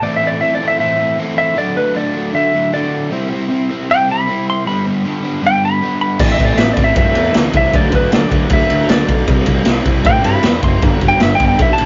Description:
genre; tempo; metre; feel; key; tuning
garage rock duo or trio; 156 BPM; 4/4; straight; unclear; A4 = 440 Hz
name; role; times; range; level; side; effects
clean lap steel guitar; melody; 0.0-11.9 s; B4 to C6; -18 LUFS; equal; none
crunchy overdriven guitar; riff; 0.0-11.9 s; G2 to E4; -21 LUFS; equal; spring reverb
fuzz fingered electric bass; bass; 6.2-11.9 s; F#1 to A2; -20 LUFS; equal; overdrive, tube saturation
raw garage drum kit; drums; 6.2-11.9 s; crash cymbal, kick drum, ride cymbal, snare drum; -17 LUFS; equal; none
room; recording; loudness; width
moderate small room reverb, RT60 0.5 s; rough rehearsal-room recording, nothing above 7.5 kHz; -15 LUFS; mono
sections
0.0-11.9 A section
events
none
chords
0.0 Am; 1.6 D; 3.1 C; 4.7 G; 6.2 Am; 7.7 D; 9.3 C; 10.8 G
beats
| 0.02 0.41 0.80 1.18 | 1.57 1.95 2.34 2.73 | 3.11 3.50 3.88 4.27 | 4.66 5.04 5.43 5.82 | 6.20 6.59 6.97 7.36 | 7.74 8.13 8.51 8.90 | 9.28 9.67 10.05 10.44 | 10.82 11.21 11.60

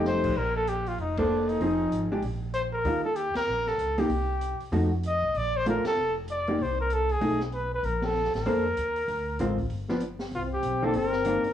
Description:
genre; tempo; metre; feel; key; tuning
jazz, small-group swing and bop; 193 BPM; 4/4; swing 62% on 8ths; Bb major; A4 = 440 Hz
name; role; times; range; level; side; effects
clear trumpet; melody; 0.0-11.5 s; D4 to Eb5; -28 LUFS; left 1 dB; cassette tape, plate reverb
breathy trombone; second line; 0.0-0.2, 10.3-11.5 s; C4 to Eb4; -32 LUFS; left 2 dB; cassette tape, plate reverb
hollow-body jazz guitar; accompaniment; 0.0-11.4 s; D3 to C5; -28 LUFS; equal; cassette tape, plate reverb
upright bass; bass; 0.0-11.5 s; F1 to F2; -32 LUFS; right 1 dB; none
open jazz drum kit; drums; 0.0-11.5 s; crash cymbal, hi-hat, kick drum, ride cymbal, snare drum; -40 LUFS; equal; cassette tape
room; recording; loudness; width
moderate studio reverb, RT60 0.5 s; home recording on cassette, studio ambience; -25 LUFS; side -10 dB against mid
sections
0.4-10.3 A section; 10.3-11.5 B section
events
band accent 1.1, 3.3, 5.8, 8.0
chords
0.4 Bbmaj9; 1.6 Fm7; 2.2 N.C.; 2.9 Ebmaj9; 4.1 C5; 4.7 F7b9; 5.3 Bbmaj7; 6.6 Am/C; 7.2 B6; 7.8 Bbmaj9; 9.1 Dm7b5; 9.7 G7; 10.3 Cm9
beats
0.04 | 0.35 0.67 0.98 1.29 | 1.60 1.92 2.23 2.54 | 2.85 3.16 3.47 3.79 | 4.10 4.41 4.72 5.03 | 5.34 5.65 5.96 6.28 | 6.59 6.90 7.21 7.52 | 7.83 8.14 8.45 8.77 | 9.08 9.39 9.70 10.01 | 10.32 10.63 10.94 11.25

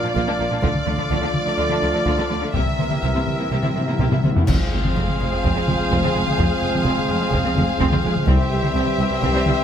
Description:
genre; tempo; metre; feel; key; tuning
cinematic, epic orchestral film score; 126 BPM; 4/4; straight; F harmonic minor from 4.5 s; A4 = 440 Hz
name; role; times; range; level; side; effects
rich studio violin section; melody; 0.0-9.6 s; D5 to F5; -27 LUFS; left 2 dB; none
warm symphonic violin section; second line; 0.0-9.6 s; A3 to Ab4; -30 LUFS; left 1 dB; none
rich symphonic viola section; accompaniment; 0.0-9.5 s; G3 to C4; -31 LUFS; right 1 dB; none
clear trombone section; sustained chords; 0.0-9.6 s; E3 to Bb3; -30 LUFS; right 3 dB; none
mellow French horn section; sustained chords; 0.0-9.6 s; C4 to G4; -29 LUFS; left 4 dB; none
warm woodwind section; sustained chords; 0.0-9.6 s; C4 to F5; -31 LUFS; equal; none
warm trumpet section; stabs; 0.0-9.6 s; Bb4 to D5; -28 LUFS; right 1 dB; none
rich symphonic cello section; bass; 0.0-9.5 s; C2 to D3; -27 LUFS; right 1 dB; none
rich chamber double bass section; bass; 0.2-9.5 s; F1 to D2; -26 LUFS; right 2 dB; none
taiko ensemble; drums; 0.2-9.6 s; none; -23 LUFS; left 1 dB; none
timpani; percussion; 2.5-4.4, 8.3-9.0 s; C3; -27 LUFS; left 2 dB; none
clash cymbals and concert bass drum; percussion; 4.5-5.4 s; none; -27 LUFS; left 1 dB; none
room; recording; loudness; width
light reverb; close, detailed microphones; -17 LUFS; side -9 dB against mid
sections
0.0-4.5 A section; 4.5-9.6 B section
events
timpani fill 2.5-4.5; drum fill 4.0-4.5; band accent 4.5-5.0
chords
0.0 Bb; 0.6 Dm; 2.5 C7; 4.5 Fm; 8.3 C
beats
0.16 | 0.63 1.10 1.58 2.06 | 2.55 3.03 3.51 4.00 | 4.48 4.96 5.44 5.91 | 6.39 6.86 7.34 7.81 | 8.29 8.76 9.23

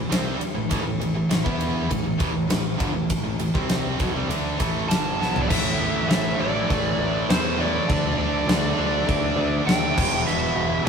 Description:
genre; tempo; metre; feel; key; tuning
hard rock; 100 BPM; 4/4; straight; A dorian; A4 = 438 Hz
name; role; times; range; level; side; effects
distorted electric guitar; riff; 0.0-10.9 s; E2 to E4; -27 LUFS; right 7 dB; overdrive
high-gain distorted guitar; riff; 0.0-10.9 s; E2 to E4; -29 LUFS; left 5 dB; distortion
fingered electric bass; bass; 0.0-10.9 s; E1 to E2; -30 LUFS; left 1 dB; none
huge arena drum kit; drums; 0.1-10.9 s; crash cymbal, kick drum, ride cymbal, snare drum, toms; -24 LUFS; left 1 dB; none
dark smooth lead guitar; melody; 4.9-10.9 s; C5 to A5; -27 LUFS; equal; overdrive
overdriven tonewheel organ; sustained chords; 5.5-10.9 s; E3 to E5; -38 LUFS; equal; none
room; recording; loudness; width
moderate studio reverb, RT60 0.5 s; rough rehearsal-room recording; -20 LUFS; side -6 dB against mid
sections
0.0-5.5 A section; 5.5-10.9 B section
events
drum fill 5.2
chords
0.0 Am; 5.5 A5; 7.9 D5; 10.0 E5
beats
0.11 | 0.71 1.31 1.90 2.50 | 3.10 3.70 4.30 4.90 | 5.49 6.09 6.69 7.28 | 7.88 8.48 9.07 9.67 | 10.26 10.86

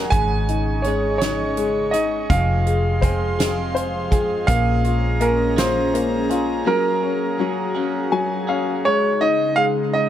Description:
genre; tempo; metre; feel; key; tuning
six-eight pop ballad; 55 BPM (dotted quarters); 6/8; straight; unclear; A4 = 443 Hz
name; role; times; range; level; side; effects
clear upright piano; accompaniment; 0.0-10.1 s; F3 to Ab5; -23 LUFS; left 6 dB; none
airy breathy pad; sustained chords; 0.0-10.1 s; Db3 to Db6; -27 LUFS; right 1 dB; chorus
direct-recorded clean electric guitar; arpeggios; 0.0-8.9 s; F2 to Ab4; -30 LUFS; right 7 dB; phaser, digital delay
vintage muted fingered electric bass; bass; 0.0-6.6 s; F1 to Bb1; -23 LUFS; equal; none
clear concert grand piano; melody; 0.1-10.1 s; Bb4 to Ab5; -22 LUFS; right 3 dB; none
natural country drum kit; drums; 0.1-6.5 s; hi-hat, kick drum, snare drum; -23 LUFS; equal; none
room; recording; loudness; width
light reverb; none; -18 LUFS; side -11 dB against mid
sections
0.0-8.8 A section; 8.8-10.1 B section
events
break 6.7-8.8; upright piano fill 7.8-8.8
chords
0.1 Absus4; 2.3 Fm; 4.5 Bbm7; 6.7 Gbadd9; 8.8 Absus4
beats
| 0.12 1.21 | 2.30 3.39 | 4.49 5.58 | 6.67 7.75 | 8.84 9.93

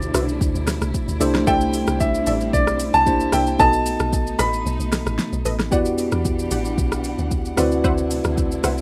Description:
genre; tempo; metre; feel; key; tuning
amapiano; 113 BPM; 4/4; straight; E minor; A4 = 442 Hz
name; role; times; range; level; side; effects
clear grand piano; melody; 0.0-5.4 s; D5 to B5; -23 LUFS; equal; delay, plate reverb
bell-like tine electric piano; accompaniment; 0.0-8.8 s; B2 to D#5; -26 LUFS; equal; plate reverb
warm studio string section; sustained chords; 0.0-8.8 s; B2 to F#5; -34 LUFS; equal; sidechain pumping
deep log drum bass; bass; 0.0-8.8 s; A1 to E2; -28 LUFS; equal; none
deep house drum kit; drums; 0.0-8.8 s; hi-hat, kick drum, rim click, shaker, snare drum; -27 LUFS; equal; none
punchy chord stab; stabs; 0.1-8.8 s; F#4 to F#5; -30 LUFS; equal; chorus, delay
room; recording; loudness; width
light reverb; rough home demo mix; -20 LUFS; mono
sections
0.0-8.8 A section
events
break 4.7-5.7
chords
0.0 D13; 1.2 C69; 3.1 C9; 3.6 B7; 5.7 Em9; 7.6 D13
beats
0.41 0.94 | 1.47 2.00 2.54 3.07 | 3.60 4.13 4.66 5.19 | 5.72 6.25 6.78 7.31 | 7.84 8.38

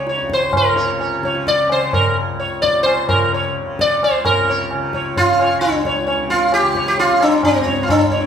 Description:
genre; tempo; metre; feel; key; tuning
indian classical, Hindustani; 130 BPM; 4/4; straight; C# raga marwa; A4 = 439 Hz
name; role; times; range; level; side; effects
sitar; melody; 0.0-8.3 s; B#3 to D5; -15 LUFS; equal; none
tanpura; drone; 0.0-8.3 s; C#2 to C#3; -27 LUFS; equal; none
tabla; percussion; 0.1-8.3 s; none; -22 LUFS; right 1 dB; none
room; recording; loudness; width
wet large studio reverb, RT60 1.2 s; band playing live in one room; -14 LUFS; side -8 dB against mid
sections
0.0-4.2 A section; 4.2-8.3 B section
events
speeding up 0.0-8.3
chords
none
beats
0.07 | 0.54 1.01 1.47 1.94 | 2.40 2.86 3.32 3.78 | 4.24 4.70 5.16 5.62 | 6.08 6.53 6.99 7.44 | 7.89

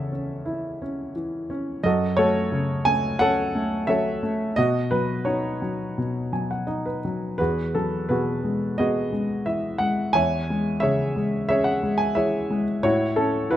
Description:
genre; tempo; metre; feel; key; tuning
classical, lyrical solo piano; 88 BPM; 4/4; rubato; E major; A4 = 439 Hz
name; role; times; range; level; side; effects
dark grand piano; solo; 0.0-13.6 s; E2 to G#5; -22 LUFS; equal; none
room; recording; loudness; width
light reverb; close, detailed microphones; -22 LUFS; side -12 dB against mid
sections
0.0-13.6 A section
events
grand piano fill 6.0-7.4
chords
0.0 A/E; 1.8 F#m; 4.6 Badd9; 7.4 Eadd9; 10.2 C#m/E; 12.8 A6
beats
0.48 1.16 | 1.85 2.53 3.21 3.89 | 4.57 5.27 5.97 6.68 | 7.39 8.09 8.79 9.47 | 10.16 10.84 11.50 12.17 | 12.85 13.52

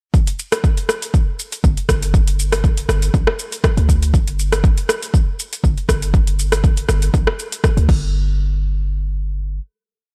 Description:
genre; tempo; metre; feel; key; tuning
afro house; 120 BPM; 4/4; swing 54% on 16ths; unclear; A4 = 440 Hz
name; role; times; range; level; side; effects
deep house drum kit; drums; 0.1-8.0 s; crash cymbal, hi-hat, rim click, shaker; -23 LUFS; equal; overdrive
electronic kick drum; drums; 0.1-8.0 s; none; -18 LUFS; equal; overdrive
warm 808-style bass; bass; 1.6-9.6 s; G1 to D2; -21 LUFS; equal; sidechain pumping
room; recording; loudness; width
little or no reverb; none; -18 LUFS; mono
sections
0.1-8.1 groove; 8.1-10.1 final hit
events
none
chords
none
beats
| 0.14 0.64 1.14 1.64 | 2.14 2.64 3.14 3.64 | 4.14 4.64 5.14 5.64 | 6.14 6.64 7.14 7.64 | 8.14 8.64 9.14

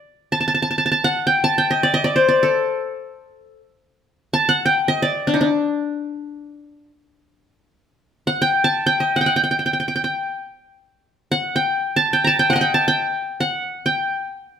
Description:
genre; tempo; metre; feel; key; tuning
arabic; free time; none; none; D maqam hijaz; A4 = 440 Hz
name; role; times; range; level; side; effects
qanun; solo; 0.0-14.6 s; D4 to Bb5; -17 LUFS; equal; none
room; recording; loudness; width
moderate stone room reverb, RT60 1.1 s; band playing live in one room; -17 LUFS; side -8 dB against mid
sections
0.0-7.8 A section; 7.8-14.6 A section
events
none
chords
none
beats
free time

